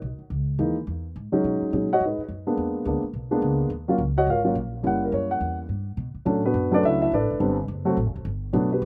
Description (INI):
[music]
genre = jazz piano trio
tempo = 211 BPM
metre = 4/4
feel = swing 60% on 8ths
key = unclear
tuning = A4 = 443 Hz
[part]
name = upright bass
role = bass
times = 0.0-8.9 s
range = D1 to B2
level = -31 LUFS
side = equal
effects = none
[part]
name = dark grand piano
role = melody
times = 0.6-8.9 s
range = Fb3 to F#5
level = -25 LUFS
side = equal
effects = none
[sound]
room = light reverb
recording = recorded outdoors, with no room sound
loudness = -25 LUFS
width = mono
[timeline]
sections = 0.0-6.0 A section; 6.0-8.9 B section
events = none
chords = 0.3 Gb7sus2 (rootless); 1.4 B69; 2.6 E7#11; 3.7 Ebm9; 4.8 Gb7b9; 6.0 Bm9; 7.1 Am11; 7.7 D; 8.3 Gmaj7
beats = 0.03 | 0.31 0.59 0.88 1.16 | 1.44 1.73 2.01 2.29 | 2.58 2.86 3.14 3.43 | 3.71 3.99 4.28 4.56 | 4.84 5.13 5.41 5.70 | 5.98 6.26 6.55 6.83 | 7.12 7.40 7.68 7.97 | 8.25 8.54 8.82